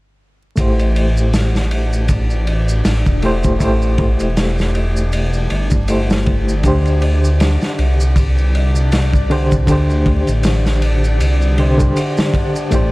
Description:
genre	trip hop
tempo	79 BPM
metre	4/4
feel	swing 57% on 16ths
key	A minor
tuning	A4 = 440 Hz
part	overdriven reed electric piano	accompaniment	0.6-12.9 s	D3 to C5	-20 LUFS	left 1 dB	fast tremolo, low-pass filter, tape echo
part	dark detuned saw bass	bass	0.6-12.9 s	E1 to D2	-15 LUFS	equal	none
part	crunchy breakbeat drum kit	drums	0.6-12.9 s	kick drum, ride cymbal, snare drum	-19 LUFS	equal	none
part	maracas	percussion	0.6-12.9 s	none	-35 LUFS	right 2 dB	none
part	backwards swelling texture	texture	1.6-12.9 s	D4 to D5	-29 LUFS	left 2 dB	built-in reverb
room	small room ambience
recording	dark, warm production, vinyl crackle, faint mains hum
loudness	-13 LUFS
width	side -21 dB against mid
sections	0.6-12.9 A section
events	filter sweep on reed electric piano 0.6-12.9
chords	0.6 Am7; 6.6 D7sus4

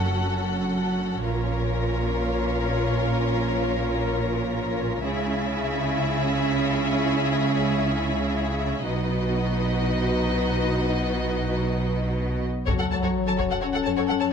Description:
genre	cinematic, epic orchestral film score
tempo	free time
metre	none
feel	none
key	unclear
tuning	A4 = 441 Hz
part	warm symphonic violin section	second line	0.0-14.3 s	F#4 to F#5	-29 LUFS	left 5 dB	none
part	warm symphonic viola section	accompaniment	0.0-14.3 s	C#4 to A4	-30 LUFS	right 2 dB	none
part	rich symphonic cello section	bass	0.0-14.3 s	F#2 to C#3	-27 LUFS	right 2 dB	none
part	rich symphonic double bass section	bass	0.0-12.8 s	F#1 to C#2	-28 LUFS	right 2 dB	none
part	warm symphonic violin section	melody	12.7-14.2 s	C#5 to A5	-29 LUFS	left 5 dB	none
part	dark French horn section	sustained chords	12.7-14.3 s	F#3 to C#4	-25 LUFS	left 7 dB	none
part	taiko ensemble	drums	12.7-13.6 s	none	-31 LUFS	left 1 dB	none
part	sub drop	sound effects	12.7-14.3 s	none	-34 LUFS	left 2 dB	none
room	moderate recital hall reverb, RT60 1.4 s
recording	none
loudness	-22 LUFS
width	side -7 dB against mid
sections	0.0-12.7 A section; 12.7-14.3 B section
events	build-up 0.0-12.7; impact 12.7-14.3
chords	0.0 F#m; 1.2 A#m; 5.0 C#m; 8.9 B; 12.7 F#m

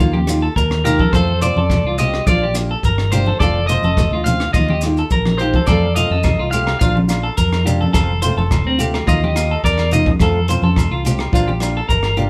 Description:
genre	highlife guitar band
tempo	106 BPM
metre	4/4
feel	straight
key	F mixolydian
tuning	A4 = 440 Hz
part	fingerpicked steel-string acoustic guitar	accompaniment	0.0-12.3 s	Eb3 to F4	-25 LUFS	equal	none
part	clean electric guitar	arpeggios	0.0-12.3 s	C4 to F5	-25 LUFS	equal	spring reverb
part	fingered electric bass	bass	0.0-12.3 s	F1 to F2	-21 LUFS	equal	none
part	compact cocktail drum kit	drums	0.0-12.3 s	hi-hat, kick drum, rim click	-22 LUFS	equal	none
part	maracas	percussion	0.0-12.0 s	none	-34 LUFS	equal	none
part	congas	percussion	0.1-12.3 s	none	-24 LUFS	equal	none
part	electric guitar at the edge of break-up	melody	0.9-10.1 s	Bb4 to F5	-23 LUFS	equal	none
part	agogo bells	percussion	5.7-12.2 s	none	-33 LUFS	equal	none
room	light reverb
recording	band playing live in one room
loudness	-16 LUFS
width	mono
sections	0.0-12.3 A section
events	clean electric guitar solo 0.0-12.3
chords	0.0 Ebsus2; 1.1 F; 2.3 Bb; 3.4 F; 4.5 Ebsus2; 5.7 F; 6.8 Bb; 7.9 F; 9.1 Ebsus2; 10.2 F; 11.3 Bb

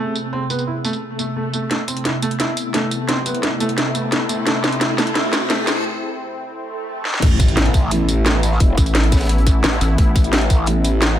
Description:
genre	dark technical drum and bass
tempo	174 BPM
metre	4/4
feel	straight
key	A harmonic minor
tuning	A4 = 439 Hz
part	sweeping resonant pad	sustained chords	0.0-11.2 s	C3 to G#4	-24 LUFS	equal	chorus, sidechain pumping
part	felt-muted upright piano	arpeggios	0.0-5.6 s	A3 to E4	-24 LUFS	right 2 dB	sidechain pumping, digital delay
part	drum and bass drum kit	drums	0.2-11.1 s	crash cymbal, hi-hat, snare drum, tambourine	-20 LUFS	equal	low-pass filter on perc, low-pass filter on snare, low-pass filter on hats, low-pass filter on cymbals, low-pass filter on room
part	swell, riser and impact	sound effects	1.1-8.6 s	none	-26 LUFS	equal	none
part	growl bass	bass	7.2-11.2 s	E1 to A1	-19 LUFS	equal	chorus, overdrive, sidechain pumping
part	crunchy breakbeat drum kit	drums	7.2-11.1 s	hi-hat, snare drum	-31 LUFS	left 1 dB	none
part	electronic kick drum	drums	7.2-10.6 s	none	-15 LUFS	equal	none
part	pulsing pluck wobble bass	bass	8.8-10.0 s	A1	-16 LUFS	equal	chorus, tube saturation
room	light reverb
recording	high-pass filter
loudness	-16 LUFS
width	side -11 dB against mid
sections	0.0-1.7 A section; 1.7-7.2 B section; 7.2-11.2 C section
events	filter sweep on felt piano 0.0-1.7; swell 1.1-1.7, 6.6-7.2; build-up 1.7-7.2; drum fill 1.7-5.8, 7.1; riser 1.7-5.8; break 5.8-7.2; drop 7.2-11.2; impact 7.2-8.6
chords	0.0 Am; 1.7 Amadd9; 7.2 Asus2

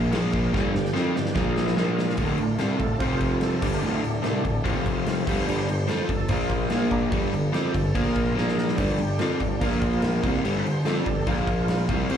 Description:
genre	blues rock power trio and southern rock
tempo	145 BPM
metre	4/4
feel	straight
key	unclear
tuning	A4 = 443 Hz
part	overdriven tonewheel organ	sustained chords	0.0-12.2 s	C3 to G5	-31 LUFS	right 2 dB	slow rotary speaker, chorus vibrato
part	overdriven semi-hollow guitar	riff	0.0-12.2 s	D2 to F4	-24 LUFS	equal	none
part	warm tuba	bass	0.0-12.2 s	D1 to F2	-30 LUFS	equal	none
part	big rock drum kit	drums	0.1-12.2 s	crash cymbal, kick drum, snare drum	-28 LUFS	equal	none
room	moderate club reverb, RT60 0.8 s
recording	live gig heard through the venue's PA, club reverb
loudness	-22 LUFS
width	side -8 dB against mid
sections	0.0-2.2 A section; 2.2-12.2 B section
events	drum fill 0.5-2.2, 8.4-8.8; tonewheel organ solo 2.2-12.2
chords	0.0 Bb5; 0.5 G5; 1.4 Bb5; 2.2 Dm; 3.0 F5; 3.6 Dm; 4.7 F5; 5.3 Gsus4; 5.5 G5; 6.3 Bb5; 7.1 G5; 8.0 Bb5; 8.8 G5; 9.6 Bb5; 10.2 G5; 11.3 Bb5; 11.9 Csus4

